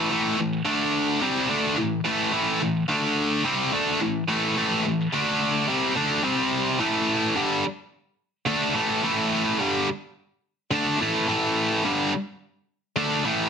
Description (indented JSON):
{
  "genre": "rock",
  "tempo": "107 BPM",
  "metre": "4/4",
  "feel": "straight",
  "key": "unclear",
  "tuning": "A4 = 438 Hz",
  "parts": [
    { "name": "tight distorted guitar", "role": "solo", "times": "0.0-13.5 s", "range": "G2 to D4", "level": "-21 LUFS", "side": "equal", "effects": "distortion" }
  ],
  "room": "moderate studio reverb, RT60 0.7 s",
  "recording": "dense, heavily limited modern master",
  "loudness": "-22 LUFS",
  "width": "side -6 dB against mid",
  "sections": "0.0-6.8 A section; 6.8-13.5 B section",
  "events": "none",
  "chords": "0.0 A5; 0.7 D5; 1.2 A5; 2.9 D5; 3.4 A5; 5.1 D5; 5.7 Csus2; 6.2 C5; 6.8 A5",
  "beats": "| 0.10 0.66 1.22 1.78 | 2.33 2.89 3.45 4.00 | 4.56 5.12 5.68 6.24 | 6.80 7.36 7.92 8.48 | 9.04 9.60 10.16 10.72 | 11.28 11.84 12.40 12.96"
}